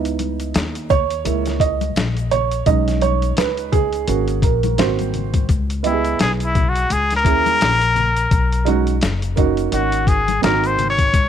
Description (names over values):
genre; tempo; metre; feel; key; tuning
hip hop, jazz-hop; 85 BPM; 4/4; swing 58% on 16ths; C# dorian; A4 = 440 Hz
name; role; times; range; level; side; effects
dark baby grand piano; accompaniment; 0.0-11.1 s; G#3 to D#5; -21 LUFS; right 12 dB; none
upright bass; bass; 0.0-11.3 s; F#1 to D#2; -22 LUFS; left 2 dB; none
boom bap sampler-style drum kit; drums; 0.1-11.3 s; hi-hat, kick drum, snare drum; -20 LUFS; left 2 dB; none
tube shaker and congas; percussion; 0.1-11.3 s; none; -30 LUFS; left 15 dB; none
trumpet with straight mute; melody; 5.9-11.3 s; E4 to C#5; -18 LUFS; left 2 dB; none
room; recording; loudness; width
small room ambience; 1960s-style stereo with parts hard left and right; -16 LUFS; side -9 dB against mid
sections
0.0-5.5 A section; 5.5-11.3 A section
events
grand piano solo 0.0-5.5; muted trumpet solo 5.5-11.3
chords
0.0 C#m9; 1.3 A#m7b5; 2.7 B69; 4.1 G#9sus4; 4.8 G#7; 5.5 C#m9; 6.9 A#m7b5; 8.3 B69; 9.7 G#9sus4; 10.4 G#7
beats
0.55 1.25 1.96 | 2.67 3.37 4.08 4.78 | 5.49 6.20 6.90 7.61 | 8.31 9.02 9.72 10.43 | 11.14